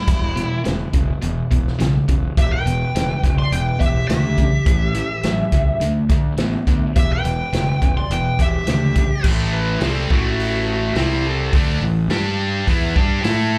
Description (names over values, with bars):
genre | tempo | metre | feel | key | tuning
blues rock power trio and southern rock | 105 BPM | 4/4 | straight | A mixolydian | A4 = 441 Hz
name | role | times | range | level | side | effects
biting lead guitar | melody | 0.0-9.2 s | E4 to C6 | -28 LUFS | equal | wah, overdrive, plate reverb, slapback echo
lead guitar through a small cranked amp | second line | 0.0-11.5 s | G3 to D5 | -32 LUFS | equal | overdrive, plate reverb, slapback echo
distorted electric guitar | riff | 0.0-13.6 s | E2 to A4 | -24 LUFS | equal | overdrive, slapback echo
fuzz fingered electric bass | bass | 0.1-13.6 s | E1 to A2 | -24 LUFS | equal | overdrive
vintage drum kit | drums | 0.1-13.4 s | crash cymbal, hi-hat, kick drum, snare drum | -22 LUFS | equal | none
room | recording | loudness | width
light reverb | live gig heard through the venue's PA, club reverb | -19 LUFS | mono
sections
0.0-9.3 A section; 9.3-13.6 B section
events
lead electric guitar solo 9.3-13.6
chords
0.1 Em; 4.7 A7; 5.8 D5; 7.0 Em7; 9.3 Am7; 11.0 C5; 11.5 A5; 12.1 G5; 12.7 A5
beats
| 0.08 0.66 1.23 1.80 | 2.38 2.95 3.53 4.10 | 4.67 5.25 5.82 6.39 | 6.97 7.54 8.11 8.68 | 9.26 9.83 10.40 10.97 | 11.54 12.11 12.68 13.25